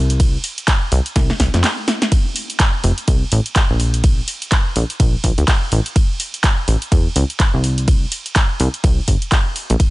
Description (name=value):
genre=piano house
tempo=125 BPM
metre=4/4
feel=swing 59% on 16ths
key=unclear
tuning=A4 = 439 Hz
part: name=plucky analog bass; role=bass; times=0.0-9.8 s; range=F1 to F2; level=-16 LUFS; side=equal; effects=sidechain pumping
part: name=punchy analog drum machine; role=drums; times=0.1-9.9 s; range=handclaps, hi-hat, ride cymbal, snare drum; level=-21 LUFS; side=equal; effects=none
part: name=electronic kick drum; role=drums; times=0.2-9.9 s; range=none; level=-15 LUFS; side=equal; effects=none
room=digital ambience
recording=nothing above 10.8 kHz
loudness=-14 LUFS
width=side -20 dB against mid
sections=0.0-9.9 A section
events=drum fill 1.2-2.1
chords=none